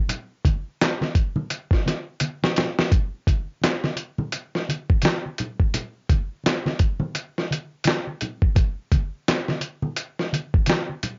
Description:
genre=R&B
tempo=85 BPM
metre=4/4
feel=swing 60% on 16ths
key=none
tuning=none
part: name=dusty soul sampler-style drum kit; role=drums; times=0.1-11.2 s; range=handclaps, hi-hat, kick drum, snare drum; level=-23 LUFS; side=equal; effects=cassette tape
part: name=congas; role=percussion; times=0.1-11.2 s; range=none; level=-31 LUFS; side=equal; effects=none
room=light reverb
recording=home recording on cassette, nothing above 7.4 kHz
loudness=-24 LUFS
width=mono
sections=0.0-11.2 A section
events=drum fill 2.2-2.9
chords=none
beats=| 0.09 0.80 1.50 2.21 | 2.92 3.62 4.33 5.03 | 5.74 6.44 7.15 7.86 | 8.56 9.27 9.97 10.68

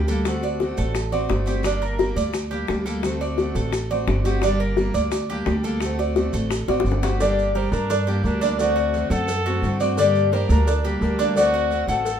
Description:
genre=latin, Cuban son and guajira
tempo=173 BPM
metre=4/4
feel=straight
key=G harmonic minor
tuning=A4 = 441 Hz
part: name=picked steel-string acoustic guitar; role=accompaniment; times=0.0-12.1 s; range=D3 to G4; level=-28 LUFS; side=left 2 dB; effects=none
part: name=Cuban tres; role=arpeggios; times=0.0-12.2 s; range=D4 to D5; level=-27 LUFS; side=right 6 dB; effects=none
part: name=upright bass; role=bass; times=0.0-12.2 s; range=G1 to G2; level=-24 LUFS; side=equal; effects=none
part: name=maracas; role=percussion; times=0.1-12.2 s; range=none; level=-39 LUFS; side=right 4 dB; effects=none
part: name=bongos and cowbell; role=percussion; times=0.3-12.2 s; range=none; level=-26 LUFS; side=left 4 dB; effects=none
part: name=nylon-string guitar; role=melody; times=7.2-12.2 s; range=Bb4 to F#5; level=-23 LUFS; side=left 5 dB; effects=none
part: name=clear trumpet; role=second line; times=7.2-12.2 s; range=D4 to A4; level=-29 LUFS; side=right 5 dB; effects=none
room=moderate small room reverb, RT60 0.6 s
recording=minimal, uncompressed stereo recording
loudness=-19 LUFS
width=side -8 dB against mid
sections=0.0-7.2 A section; 7.2-12.2 B section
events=drum fill 6.7-7.2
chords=0.3 D7; 1.6 Gm; 3.0 D7; 4.4 Gm; 5.8 D7; 7.2 Gm; 8.6 D7; 10.0 Gm; 11.4 D7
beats=| 0.26 0.61 0.95 1.30 | 1.65 2.00 2.34 2.69 | 3.04 3.39 3.73 4.08 | 4.43 4.78 5.12 5.47 | 5.82 6.17 6.51 6.86 | 7.21 7.55 7.90 8.25 | 8.59 8.94 9.29 9.63 | 9.98 10.32 10.67 11.02 | 11.36 11.71 12.05

